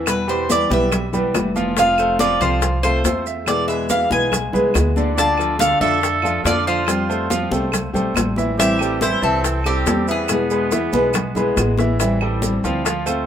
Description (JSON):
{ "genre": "latin, Cuban son and guajira", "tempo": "141 BPM", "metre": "4/4", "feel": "straight", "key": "A minor", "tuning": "A4 = 440 Hz", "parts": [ { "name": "nylon-string guitar", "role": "accompaniment", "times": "0.0-13.3 s", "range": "B2 to G4", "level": "-23 LUFS", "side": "left 1 dB", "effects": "none" }, { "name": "clear concert grand piano", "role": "arpeggios", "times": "0.0-13.3 s", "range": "D3 to F5", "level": "-23 LUFS", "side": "right 1 dB", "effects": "none" }, { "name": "upright bass", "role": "bass", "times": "0.0-13.2 s", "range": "F1 to F2", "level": "-24 LUFS", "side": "equal", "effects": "none" }, { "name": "Cuban tres", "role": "melody", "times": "0.1-11.8 s", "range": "G4 to A5", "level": "-21 LUFS", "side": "equal", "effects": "none" }, { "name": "bongos", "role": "percussion", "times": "0.1-13.1 s", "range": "none", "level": "-26 LUFS", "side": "left 7 dB", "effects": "none" }, { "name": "claves", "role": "percussion", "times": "0.1-13.3 s", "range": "none", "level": "-32 LUFS", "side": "right 6 dB", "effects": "none" }, { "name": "congas", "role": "percussion", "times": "0.1-13.3 s", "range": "none", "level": "-27 LUFS", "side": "left 1 dB", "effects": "none" }, { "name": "maracas", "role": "percussion", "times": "0.1-13.3 s", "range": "none", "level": "-28 LUFS", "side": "right 7 dB", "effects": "none" }, { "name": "growling trumpet", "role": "second line", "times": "5.2-11.7 s", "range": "B3 to D5", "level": "-25 LUFS", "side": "right 7 dB", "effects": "none" } ], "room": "moderate spring reverb, RT60 2.6 s", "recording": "minimal, uncompressed stereo recording", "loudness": "-16 LUFS", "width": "side -9 dB against mid", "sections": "0.0-12.0 A section; 12.0-13.3 B section", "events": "drum fill 11.8", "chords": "0.1 Em; 1.8 F; 3.5 E; 5.2 Dm; 6.9 Fadd9; 8.6 Am7; 10.3 E; 12.0 Am7" }